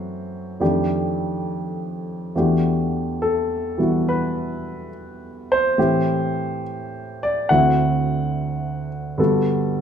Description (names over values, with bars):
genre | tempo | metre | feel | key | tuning
jazz ballad | 70 BPM | 4/4 | swing 67% on 8ths | unclear | A4 = 440 Hz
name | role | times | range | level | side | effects
warm grand piano | solo | 0.0-9.8 s | D2 to F#5 | -20 LUFS | equal | none
room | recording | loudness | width
moderate large studio reverb, RT60 1.1 s | band playing live in one room | -19 LUFS | side -8 dB against mid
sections
0.0-9.8 A section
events
none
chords
0.0 F#m7b5; 0.6 F13; 2.3 Em11; 5.8 Am7; 7.5 D7; 9.2 Gmaj9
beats
0.61 1.47 | 2.34 3.21 4.07 4.92 | 5.78 6.63 7.49 8.34 | 9.19